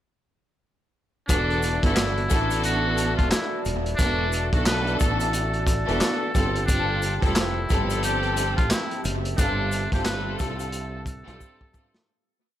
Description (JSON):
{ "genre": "hip hop, boom-bap hip-hop", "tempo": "89 BPM", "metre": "4/4", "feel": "swing 60% on 16ths", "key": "E minor", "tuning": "A4 = 439 Hz", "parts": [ { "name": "trumpet with metal mute", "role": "melody", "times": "1.3-12.0 s", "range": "D4 to B4", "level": "-29 LUFS", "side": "equal", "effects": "high-pass filter, low-pass filter, analog delay" }, { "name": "clear studio string section", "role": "accompaniment", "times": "1.3-12.1 s", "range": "G2 to A4", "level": "-28 LUFS", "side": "equal", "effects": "high-pass filter, low-pass filter" }, { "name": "mellow tonewheel organ", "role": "sustained chords", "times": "1.3-12.0 s", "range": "C4 to A5", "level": "-34 LUFS", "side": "equal", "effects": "wide subtle chorus, high-pass filter, low-pass filter" }, { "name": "fretless electric bass", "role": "bass", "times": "1.3-11.4 s", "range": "D#1 to C2", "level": "-28 LUFS", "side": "equal", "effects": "none" }, { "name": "crunchy breakbeat drum kit", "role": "drums", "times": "1.3-12.1 s", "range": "handclaps, hi-hat, kick drum, snare drum", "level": "-26 LUFS", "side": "equal", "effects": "analog delay" }, { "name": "egg shaker", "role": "percussion", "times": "1.3-11.9 s", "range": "none", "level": "-38 LUFS", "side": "left 12 dB", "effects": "none" } ], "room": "light reverb, small room ambience", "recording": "echo-heavy mix", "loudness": "-21 LUFS", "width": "side -12 dB against mid", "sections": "1.3-12.1 hook", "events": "fade-out 9.4-12.1; drum fill 11.4-12.1", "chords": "1.3 E9sus4; 6.3 G9sus4", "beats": "| 1.29 1.97 2.64 3.32 | 3.99 4.67 5.34 6.01 | 6.69 7.36 8.04 8.71 | 9.38 10.06 10.73 11.41" }